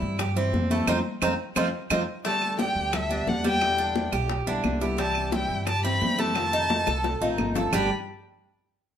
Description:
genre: latin, Cuban son and guajira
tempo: 175 BPM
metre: 4/4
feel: straight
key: G major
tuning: A4 = 439 Hz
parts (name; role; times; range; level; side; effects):
- nylon-string guitar; accompaniment; 0.0-7.9 s; G2 to G4; -32 LUFS; left 2 dB; none
- Cuban tres; arpeggios; 0.0-7.9 s; G3 to A4; -29 LUFS; right 4 dB; none
- upright bass; bass; 0.0-7.9 s; G1 to G2; -31 LUFS; equal; none
- congas; percussion; 0.0-7.8 s; none; -32 LUFS; left 1 dB; none
- bongos; percussion; 0.2-7.8 s; none; -35 LUFS; left 5 dB; none
- claves; percussion; 0.2-7.8 s; none; -34 LUFS; right 6 dB; none
- warm violin; melody; 2.3-7.9 s; E5 to B5; -27 LUFS; left 2 dB; none
room: moderate studio reverb, RT60 1.0 s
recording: lossy compression artefacts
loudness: -23 LUFS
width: side -9 dB against mid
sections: 0.0-2.2 A section; 2.2-7.7 B section; 7.7-9.0 C section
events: band accent 0.9-2.2; drum fill 1.7-2.2, 6.7-7.7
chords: 0.0 C; 0.9 F7; 2.2 Gadd9; 3.6 Em7; 5.0 C; 6.4 F7; 7.7 G5

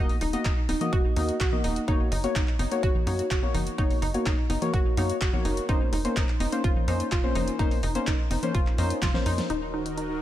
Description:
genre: progressive house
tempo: 126 BPM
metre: 4/4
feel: straight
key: Eb dorian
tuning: A4 = 440 Hz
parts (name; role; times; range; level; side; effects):
- analog pluck; arpeggios; 0.0-10.1 s; Eb4 to Gb4; -32 LUFS; right 1 dB; chorus, sidechain pumping, digital delay
- deep mellow chord stab; stabs; 0.0-9.5 s; Bb3 to Eb5; -30 LUFS; left 2 dB; chorus, cassette tape, sidechain pumping, digital delay
- tight sequencer bass; bass; 0.0-10.2 s; Eb1 to Gb2; -30 LUFS; equal; sidechain pumping
- big-room dance drum kit; drums; 0.1-10.1 s; handclaps, hi-hat, snare drum; -35 LUFS; equal; none
- congas; percussion; 0.3-9.2 s; none; -37 LUFS; left 5 dB; sidechain pumping on perc
- electronic kick drum; drums; 0.5-9.1 s; none; -26 LUFS; equal; none
- supersaw pad; sustained chords; 9.5-10.2 s; Eb3 to Bb4; -32 LUFS; right 3 dB; phaser, sidechain pumping
room: little or no reverb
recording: none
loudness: -23 LUFS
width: side -12 dB against mid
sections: 0.0-9.5 A section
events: drum fill 9.0-9.5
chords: 0.0 Ebm; 1.9 Gb; 5.7 Bbmadd9/F; 9.5 Ebm

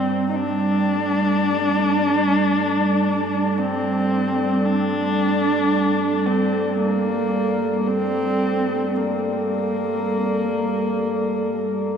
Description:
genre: dark ambient drone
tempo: free time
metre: none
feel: none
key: G minor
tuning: A4 = 439 Hz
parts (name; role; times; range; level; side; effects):
- dark horsehead fiddle; melody; 0.0-12.0 s; Bb3 to Eb4; -21 LUFS; left 1 dB; diffuse ambient delay
- dark analog pad; sustained chords; 0.0-12.0 s; G3 to D5; -22 LUFS; right 1 dB; chorus
room: wet cathedral reverb, RT60 7.3 s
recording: none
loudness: -18 LUFS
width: side -7 dB against mid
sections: 0.0-12.0 A section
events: none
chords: 0.0 G5

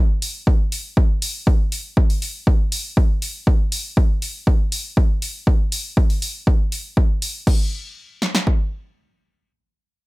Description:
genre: melodic techno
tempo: 120 BPM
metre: 4/4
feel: straight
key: none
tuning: none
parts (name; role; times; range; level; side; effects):
- punchy analog drum machine; drums; 0.2-7.6 s; crash cymbal, hi-hat; -27 LUFS; left 1 dB; none
- punchy analog drum machine; drums; 0.5-8.6 s; kick drum, snare drum; -16 LUFS; equal; none
room: little or no reverb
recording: none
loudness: -18 LUFS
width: side -21 dB against mid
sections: 0.0-7.5 A section; 7.5-10.1 B section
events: none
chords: none

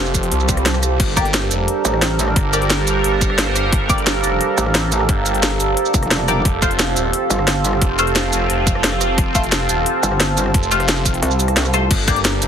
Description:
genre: dark technical drum and bass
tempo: 176 BPM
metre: 4/4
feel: straight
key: G minor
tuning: A4 = 439 Hz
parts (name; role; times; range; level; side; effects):
- sweeping resonant pad; sustained chords; 0.0-12.5 s; G3 to Bb4; -23 LUFS; right 1 dB; chorus, sidechain pumping
- phased detuned saw bass; bass; 0.0-12.5 s; Eb1 to C2; -21 LUFS; equal; phaser, tube saturation
- warbly tape-like pad; texture; 0.0-12.5 s; G4 to A5; -23 LUFS; right 4 dB; chorus, built-in reverb, sidechain pumping
- drum and bass drum kit; drums; 0.1-12.5 s; crash cymbal, hi-hat, rim click, shaker, snare drum; -20 LUFS; equal; none
- electronic kick drum; drums; 0.1-12.1 s; none; -18 LUFS; equal; none
- swell; sound effects; 0.4-1.0 s; none; -26 LUFS; right 4 dB; none
- band-passed chord stab; stabs; 1.2-4.0, 6.3-12.1 s; A3 to D5; -22 LUFS; left 3 dB; phaser, wide subtle chorus, cassette tape, digital delay
- metallic wobble bass; bass; 1.8-2.3, 4.6-7.8, 10.0-11.9 s; F1 to C2; -19 LUFS; equal; chorus
room: moderate digital room reverb, RT60 1.1 s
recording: heavily compressed radio sound, multiband compression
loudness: -14 LUFS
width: side -8 dB against mid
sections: 0.0-11.9 A section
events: drop 0.0-11.9; swell 0.4-1.0; kick drops out 11.2-11.9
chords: 0.0 F; 1.0 Gm; 6.5 F; 11.9 Gm

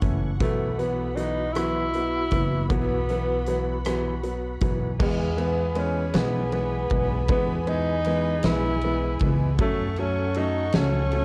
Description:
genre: six-eight pop ballad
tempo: 52 BPM (dotted quarters)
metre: 6/8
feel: straight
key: E major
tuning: A4 = 440 Hz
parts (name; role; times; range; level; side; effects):
- breathy tenor saxophone; melody; 0.0-11.2 s; G#3 to E4; -30 LUFS; equal; tape echo
- clear concert grand piano; accompaniment; 0.0-11.2 s; E3 to C#4; -31 LUFS; equal; none
- warm studio string section; sustained chords; 0.0-11.2 s; A3 to C#6; -39 LUFS; equal; none
- upright bass; bass; 0.0-11.2 s; F#1 to F#2; -30 LUFS; equal; none
- huge arena drum kit; drums; 0.0-11.2 s; crash cymbal, hi-hat, kick drum, ride cymbal, rim click, snare drum; -30 LUFS; equal; none
room: moderate studio ambience, RT60 0.5 s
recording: worn, warbling old tape, cassette tape, warbly pitch drift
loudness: -25 LUFS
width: mono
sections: 0.0-5.0 A section; 5.0-11.2 B section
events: none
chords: 0.4 Bsus4; 5.0 E; 9.6 F#m

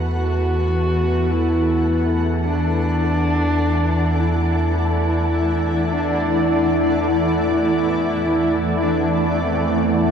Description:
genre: dark ambient drone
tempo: 52 BPM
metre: 4/4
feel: straight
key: unclear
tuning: A4 = 440 Hz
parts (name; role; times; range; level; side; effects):
- granular cloud pad; sustained chords; 0.0-10.1 s; E3 to F#5; -21 LUFS; equal; built-in reverb
- analog drone; drone; 0.0-10.1 s; E2; -21 LUFS; equal; chorus
- wind-like tuned noise texture; texture; 0.0-10.1 s; A4; -29 LUFS; right 1 dB; built-in reverb
- dark horsehead fiddle; melody; 0.2-10.1 s; C4 to F#4; -22 LUFS; left 1 dB; ping-pong delay
room: wet huge ambient reverb, RT60 7.2 s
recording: dark, warm production, nothing above 10.4 kHz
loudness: -17 LUFS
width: side -7 dB against mid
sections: 0.0-10.1 A section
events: filter sweep on synth drone 0.0-10.1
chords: 0.0 Dadd9/E

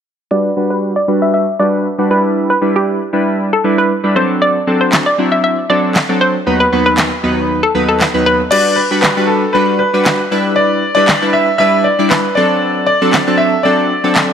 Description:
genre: dance-pop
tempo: 117 BPM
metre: 4/4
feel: straight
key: G major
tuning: A4 = 440 Hz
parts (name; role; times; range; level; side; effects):
- hollow square pluck; melody; 0.3-8.4 s; G4 to E5; -16 LUFS; left 1 dB; chorus, low-pass filter
- chorused retro synth keys; accompaniment; 0.3-14.3 s; D#2 to D5; -14 LUFS; equal; low-pass filter
- pop drum kit; drums; 4.9-14.3 s; crash cymbal, handclaps, snare drum; -16 LUFS; equal; none
- warm baby grand piano; melody; 8.5-14.3 s; A4 to E5; -13 LUFS; equal; digital delay
room: light reverb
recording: none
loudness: -11 LUFS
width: side -8 dB against mid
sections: 0.3-8.5 A section; 8.5-14.3 B section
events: filter sweep 0.3-8.5; kick muted 7.5-8.5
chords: 0.3 Gmaj7; 2.1 Em7; 4.2 D7; 6.5 B/D#; 8.5 Gmaj7; 10.3 Em7; 12.4 D7

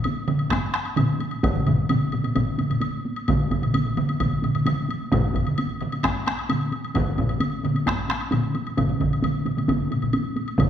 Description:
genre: japanese traditional, taiko drum ensemble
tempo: 131 BPM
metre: 4/4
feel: straight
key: none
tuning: none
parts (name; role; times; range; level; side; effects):
- woodblock; percussion; 0.0-10.7 s; none; -33 LUFS; left 2 dB; none
- taiko ensemble; percussion; 0.1-10.7 s; none; -27 LUFS; equal; none
- taiko ensemble; percussion; 0.3-10.7 s; none; -27 LUFS; left 2 dB; none
- taiko ensemble; percussion; 0.3-10.7 s; none; -26 LUFS; right 3 dB; none
- taiko ensemble; percussion; 0.5-10.7 s; none; -28 LUFS; equal; none
room: wet recital hall reverb, RT60 1.4 s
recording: recorded in a church or concert hall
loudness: -21 LUFS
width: side -9 dB against mid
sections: 0.0-10.7 A section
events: none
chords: none

